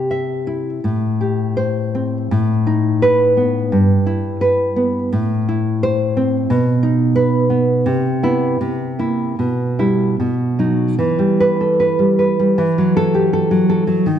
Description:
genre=romantic piece for solo classical guitar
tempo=73-90 BPM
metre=2/4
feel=rubato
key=E minor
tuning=A4 = 440 Hz
part: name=nylon-string guitar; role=solo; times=0.0-14.2 s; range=G2 to E5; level=-14 LUFS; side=equal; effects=none
room=wet concert hall reverb, RT60 1.7 s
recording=dark, warm production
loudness=-14 LUFS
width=side -9 dB against mid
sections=0.0-11.0 A section; 11.0-14.2 B section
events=none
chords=0.0 C; 0.8 Am7; 2.3 B7/A; 3.7 Em/G; 5.1 Am; 6.5 B; 7.9 Cmaj7; 8.6 C7; 9.4 Em/B; 10.2 B; 11.0 Em; 12.6 Esus24

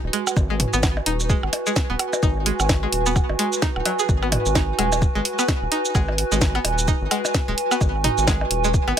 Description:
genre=minimal techno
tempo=129 BPM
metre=4/4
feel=swing 59% on 16ths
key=G# minor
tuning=A4 = 439 Hz
part: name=round analog bass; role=bass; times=0.0-8.9 s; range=D#1 to G#1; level=-25 LUFS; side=equal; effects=sidechain pumping
part: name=warbly tape-like pad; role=texture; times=0.0-9.0 s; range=F#4 to G#5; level=-25 LUFS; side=right 2 dB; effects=chorus, built-in reverb, sidechain pumping
part: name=string-like resonator pluck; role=riff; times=0.1-8.9 s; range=F#3 to G#4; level=-27 LUFS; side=equal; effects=chorus, sidechain pumping, digital delay
part: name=garage drum kit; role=drums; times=0.1-9.0 s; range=hi-hat, shaker, snare drum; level=-24 LUFS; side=right 1 dB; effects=none
part: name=electronic percussion blips and toms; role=percussion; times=0.3-9.0 s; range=none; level=-28 LUFS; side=right 1 dB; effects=dub echo
part: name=electronic kick drum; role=drums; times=0.4-8.8 s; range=none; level=-22 LUFS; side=equal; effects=none
room=light reverb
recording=none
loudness=-18 LUFS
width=side -9 dB against mid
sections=0.0-9.0 A section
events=none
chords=0.0 G#m7

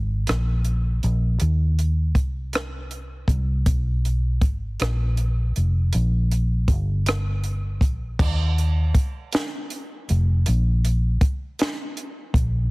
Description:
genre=slow six-eight R&B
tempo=53 BPM (dotted quarters)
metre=6/8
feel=straight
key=Eb major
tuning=A4 = 438 Hz
part: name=vintage muted fingered electric bass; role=bass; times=0.0-12.7 s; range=F1 to Eb2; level=-21 LUFS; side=equal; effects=none
part: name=compact cocktail drum kit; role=drums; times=0.3-12.5 s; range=crash cymbal, hi-hat, kick drum, rim click, snare drum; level=-23 LUFS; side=equal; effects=none
room=little or no reverb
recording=heavily compressed radio sound, multiband compression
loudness=-20 LUFS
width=side -25 dB against mid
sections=0.0-8.2 A section; 8.2-12.7 B section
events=none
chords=none

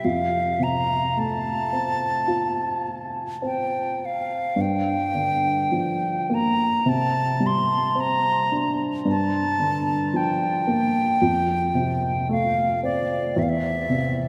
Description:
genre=celtic folk, Celtic slow air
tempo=54 BPM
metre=4/4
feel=uneven beats, rubato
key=unclear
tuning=A4 = 439 Hz
part: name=bright wooden flute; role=melody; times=0.0-14.3 s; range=D5 to C6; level=-26 LUFS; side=equal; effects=analog delay
part: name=dark upright piano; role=accompaniment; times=0.0-14.3 s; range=E2 to F4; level=-27 LUFS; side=equal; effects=none
room=wet cathedral reverb, RT60 6.2 s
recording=dreamy mix soaked in reverb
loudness=-23 LUFS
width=mono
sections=0.0-14.3 A section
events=none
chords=0.0 F; 4.6 Gm7; 6.9 Csus2; 9.1 Gm7; 11.2 F; 13.4 C/E

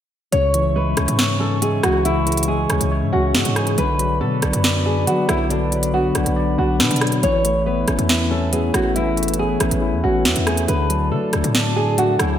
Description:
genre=hip hop, drill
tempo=139 BPM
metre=4/4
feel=half-time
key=C# phrygian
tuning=A4 = 442 Hz
part: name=nylon-string guitar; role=melody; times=0.3-12.4 s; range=D4 to C#5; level=-22 LUFS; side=right 1 dB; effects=low-pass filter, tape echo
part: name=tine electric piano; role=accompaniment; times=0.3-12.4 s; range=C#3 to D5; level=-22 LUFS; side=left 4 dB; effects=medium stereo tremolo, low-pass filter
part: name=glass harmonica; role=sustained chords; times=0.4-12.4 s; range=E4 to C#6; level=-28 LUFS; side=right 1 dB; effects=none
part: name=hard-hitting 808-style bass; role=bass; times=0.3-12.4 s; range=A1 to F#3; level=-22 LUFS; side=right 1 dB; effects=none
part: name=drill drum kit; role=drums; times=0.3-12.3 s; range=hi-hat, rim click, snare drum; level=-22 LUFS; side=right 1 dB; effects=none
room=wet lush hall reverb, RT60 1.7 s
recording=dreamy mix soaked in reverb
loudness=-16 LUFS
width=side -10 dB against mid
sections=0.3-12.4 A section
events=none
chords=0.3 C#m; 3.8 Bm; 7.2 Aadd9; 10.7 D

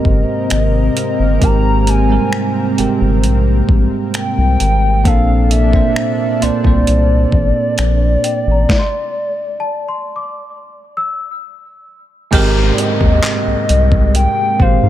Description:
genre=contemporary R&B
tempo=66 BPM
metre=4/4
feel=straight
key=Ab major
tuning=A4 = 437 Hz
part: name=hollow clarinet-like synth lead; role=melody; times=0.0-14.9 s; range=D5 to Bb5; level=-19 LUFS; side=left 2 dB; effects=chorus
part: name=bell-like tine electric piano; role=accompaniment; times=0.0-14.9 s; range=Ab2 to C5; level=-18 LUFS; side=right 5 dB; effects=analog chorus
part: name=lush unison pad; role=sustained chords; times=0.0-14.9 s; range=C3 to Bb4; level=-22 LUFS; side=left 2 dB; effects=chorus
part: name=small celesta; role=texture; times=0.0-14.9 s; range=G5 to G6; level=-25 LUFS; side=left 3 dB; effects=tape echo
part: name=round analog bass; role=bass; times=0.1-14.9 s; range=G1 to Ab2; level=-14 LUFS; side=left 1 dB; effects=none
part: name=dusty soul sampler-style drum kit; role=drums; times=0.1-14.8 s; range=crash cymbal, finger snaps, handclaps, hi-hat, kick drum, snare drum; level=-16 LUFS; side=equal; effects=overdrive
part: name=downlifter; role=sound effects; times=12.3-14.9 s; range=none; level=-24 LUFS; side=left 1 dB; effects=none
room=digital ambience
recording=none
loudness=-12 LUFS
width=side -12 dB against mid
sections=0.0-12.3 A section; 12.3-14.9 B section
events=stop 8.7-12.3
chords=0.0 Abmaj9; 5.1 Bbmaj9; 12.3 Abmaj9

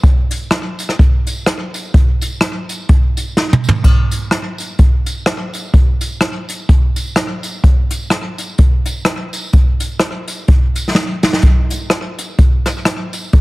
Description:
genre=ska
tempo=126 BPM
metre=4/4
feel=swing 58% on 8ths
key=none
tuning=none
part: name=jazz brush drum kit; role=drums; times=0.0-13.4 s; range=hi-hat, kick drum, rim click, snare drum, splash cymbal, toms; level=-12 LUFS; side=equal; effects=none
part: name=tambourine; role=percussion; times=0.3-13.2 s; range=none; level=-30 LUFS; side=right 2 dB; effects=slapback echo
room=little or no reverb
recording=heavily compressed radio sound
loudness=-13 LUFS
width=side -20 dB against mid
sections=0.0-11.4 A section; 11.4-13.4 B section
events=drum fill 3.4-3.8, 11.0-11.4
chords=none

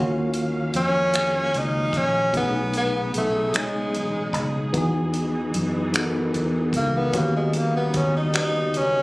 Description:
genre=slow six-eight R&B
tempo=50 BPM (dotted quarters)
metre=6/8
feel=straight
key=Eb minor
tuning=A4 = 436 Hz
part: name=tine electric piano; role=accompaniment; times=0.0-9.0 s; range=B2 to B4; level=-26 LUFS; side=equal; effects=overdrive, fast stereo tremolo
part: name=warm studio string section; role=sustained chords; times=0.0-9.0 s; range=C#3 to F5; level=-32 LUFS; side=equal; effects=none
part: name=vintage muted fingered electric bass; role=bass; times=0.0-9.0 s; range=A1 to Gb2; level=-27 LUFS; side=equal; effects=none
part: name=damped 70s drum kit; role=drums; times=0.3-8.9 s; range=finger snaps, hi-hat, kick drum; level=-28 LUFS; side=equal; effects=none
part: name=breathy tenor saxophone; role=melody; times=0.8-9.0 s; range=Ab3 to Eb4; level=-23 LUFS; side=equal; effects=none
room=light reverb, studio ambience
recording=recorded on a phone in the room, studio reverb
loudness=-20 LUFS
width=side -21 dB against mid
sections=0.0-9.0 A section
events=tenor saxophone solo 0.0-9.0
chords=0.0 Ebm9; 2.3 B13; 4.7 Emaj7; 7.1 Eb7alt

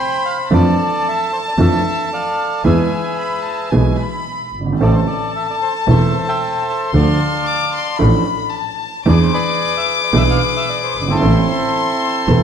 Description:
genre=tango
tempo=112 BPM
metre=4/4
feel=rubato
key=A minor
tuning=A4 = 445 Hz
part: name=bandoneon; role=melody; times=0.0-12.4 s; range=C4 to A5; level=-20 LUFS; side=equal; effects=tape echo
part: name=rich chamber violin section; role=second line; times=0.0-12.4 s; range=G#5 to D6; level=-22 LUFS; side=left 6 dB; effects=none
part: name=clear upright piano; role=accompaniment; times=0.5-12.4 s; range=E1 to A4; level=-18 LUFS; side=right 3 dB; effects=none
part: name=rich double bass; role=bass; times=0.5-12.4 s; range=E1 to F2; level=-17 LUFS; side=equal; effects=none
room=moderate recital hall reverb, RT60 1.6 s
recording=dark, warm production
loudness=-14 LUFS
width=side -8 dB against mid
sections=0.0-12.4 A section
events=none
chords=0.0 Fsus2; 0.5 Dmadd9/F; 2.6 E; 4.8 Am; 6.9 Dm; 9.1 E7; 11.2 Amadd9

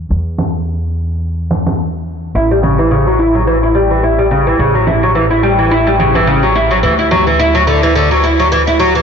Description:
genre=organic downtempo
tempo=107 BPM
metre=4/4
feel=swing 56% on 16ths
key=unclear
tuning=A4 = 440 Hz
part: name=upright bass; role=bass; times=0.0-9.0 s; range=A1 to E2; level=-17 LUFS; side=equal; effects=none
part: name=congas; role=drums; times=0.4-7.2 s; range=none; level=-19 LUFS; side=right 1 dB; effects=overdrive, low-pass filter on perc, low-pass filter on room
part: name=oud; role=arpeggios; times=2.4-9.0 s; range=C#3 to E4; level=-10 LUFS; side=equal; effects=tape echo
room=moderate huge ambient reverb, RT60 4.7 s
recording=blown-out, overdriven recording, overdrive, low-pass filter, nothing above 7.8 kHz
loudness=-10 LUFS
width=side -6 dB against mid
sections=0.0-9.0 A section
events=filter sweep on drum 0.0-9.0; filter sweep 0.0-9.0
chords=0.0 N.C.; 2.4 A; 6.8 Dadd9

